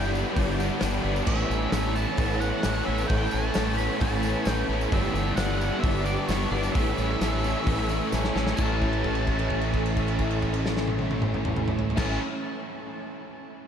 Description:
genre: rock, shoegaze and dream pop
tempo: 131 BPM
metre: 4/4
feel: straight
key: A mixolydian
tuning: A4 = 436 Hz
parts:
  - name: octave-fuzz lead guitar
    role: melody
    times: 0.0-12.2 s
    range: C#5 to B5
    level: -35 LUFS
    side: right 1 dB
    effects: distortion, diffuse ambient delay
  - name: phased string machine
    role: sustained chords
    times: 0.0-12.2 s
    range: C#4 to C#6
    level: -35 LUFS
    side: equal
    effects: ensemble chorus, phaser
  - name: direct-recorded clean electric guitar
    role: arpeggios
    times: 0.0-12.2 s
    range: E3 to D4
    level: -36 LUFS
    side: left 6 dB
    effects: none
  - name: crunchy overdriven guitar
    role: riff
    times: 0.0-12.2 s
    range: G2 to E4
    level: -33 LUFS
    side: left 6 dB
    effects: ensemble chorus
  - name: crunchy overdriven guitar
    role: riff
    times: 0.0-12.2 s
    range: G2 to A4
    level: -32 LUFS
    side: right 7 dB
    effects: reverse reverb
  - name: tight distorted guitar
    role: riff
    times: 0.0-12.2 s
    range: G2 to E4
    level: -35 LUFS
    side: right 1 dB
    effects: distortion
  - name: growling fingered electric bass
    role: bass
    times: 0.0-12.2 s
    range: G1 to A1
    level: -29 LUFS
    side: equal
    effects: overdrive
  - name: tambourine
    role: percussion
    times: 0.0-8.8 s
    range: none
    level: -47 LUFS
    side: right 8 dB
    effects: none
  - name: loose indie drum kit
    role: drums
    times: 0.4-12.1 s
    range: crash cymbal, hi-hat, kick drum, snare drum, toms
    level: -30 LUFS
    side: equal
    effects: none
room: wet huge ambient reverb, RT60 7.6 s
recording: dreamy mix soaked in reverb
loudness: -23 LUFS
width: side -8 dB against mid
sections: 0.0-8.6 A section; 8.6-12.3 B section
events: drum fill 8.1-8.6; held note 8.6-12.0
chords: 0.0 G6; 1.3 Aadd9; 4.9 G6; 6.8 A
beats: 0.36 0.82 | 1.27 1.73 2.18 2.64 | 3.09 3.55 4.00 4.46 | 4.92 5.38 5.83 6.29 | 6.75 7.21 7.67 8.13 | 8.59 9.04 9.50 9.96 | 10.42 10.88 11.34 11.80

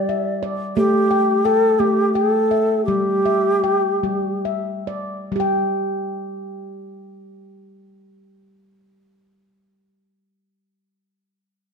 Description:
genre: world meditative, meditative tuned percussion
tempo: 44-59 BPM (dotted quarters)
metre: 6/8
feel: straight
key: unclear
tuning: A4 = 439 Hz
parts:
  - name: Native American-style cedar flute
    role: melody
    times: 0.0-4.4 s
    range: G4 to D5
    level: -18 LUFS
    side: right 1 dB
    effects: none
  - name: handpan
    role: arpeggios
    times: 0.0-10.3 s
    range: G3 to G5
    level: -21 LUFS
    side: left 2 dB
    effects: none
room: moderate recital hall reverb, RT60 1.5 s, small room reverb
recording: none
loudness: -17 LUFS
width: side -6 dB against mid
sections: 0.0-5.3 A section; 5.3-10.8 B section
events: slowing down 0.8-5.3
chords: 0.0 G5; 0.8 A5; 2.9 G5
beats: | 0.77 1.80 | 2.88 4.04 | 5.33 6.69 | 8.05 9.41

